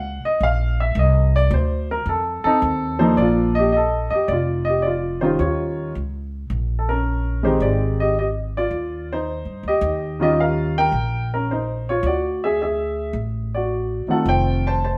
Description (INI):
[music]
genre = jazz piano trio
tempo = 108 BPM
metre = 4/4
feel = swing 68% on 8ths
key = Bb major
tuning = A4 = 440 Hz
[part]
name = warm baby grand piano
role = melody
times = 0.0-15.0 s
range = Eb3 to A5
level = -22 LUFS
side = equal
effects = none
[part]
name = upright bass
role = bass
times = 0.0-15.0 s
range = F1 to G2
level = -26 LUFS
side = equal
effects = none
[sound]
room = moderate stone room reverb, RT60 1.0 s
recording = band playing live in one room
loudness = -21 LUFS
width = mono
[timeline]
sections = 0.0-3.2 A section; 3.2-15.0 B section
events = grand piano solo 0.0-3.2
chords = 0.0 Ebm7 (rootless); 1.0 Cmadd9; 2.1 F7; 3.2 Bbmaj7; 5.4 Eb9; 7.6 Abmaj7; 9.8 Eb9; 12.0 Dadd9; 14.3 F7